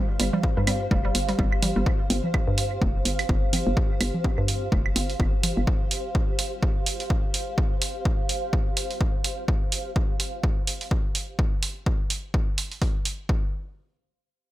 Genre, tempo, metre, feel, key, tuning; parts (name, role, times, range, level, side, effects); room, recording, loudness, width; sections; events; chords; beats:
minimal techno; 126 BPM; 4/4; swing 57% on 16ths; A4 = 440 Hz
granular cloud pad; texture; 0.0-9.5 s; G4 to F5; -32 LUFS; equal; built-in reverb, sidechain pumping
hollow square pluck; riff; 0.2-1.8 s; G3; -30 LUFS; right 3 dB; chorus, sidechain pumping, tape echo
hollow knocking FM bass; bass; 0.2-5.7 s; F1 to G2; -26 LUFS; equal; sidechain pumping
electronic hi-hat; drums; 0.2-13.2 s; -28 LUFS; right 3 dB
congas and woodblock; percussion; 0.3-5.5 s; -32 LUFS; right 2 dB; dub echo
electronic kick drum; drums; 0.4-13.4 s; -24 LUFS; equal
digital ambience; -22 LUFS; side -15 dB against mid
0.0-13.3 A section; 13.3-14.5 B section
0.0 Fsus2; 13.3 N.C.
0.43 0.91 1.39 | 1.86 2.34 2.82 3.29 | 3.77 4.24 4.72 5.20 | 5.67 6.15 6.62 7.10 | 7.58 8.05 8.53 9.01 | 9.48 9.96 10.44 10.91 | 11.39 11.86 12.34 12.82 | 13.29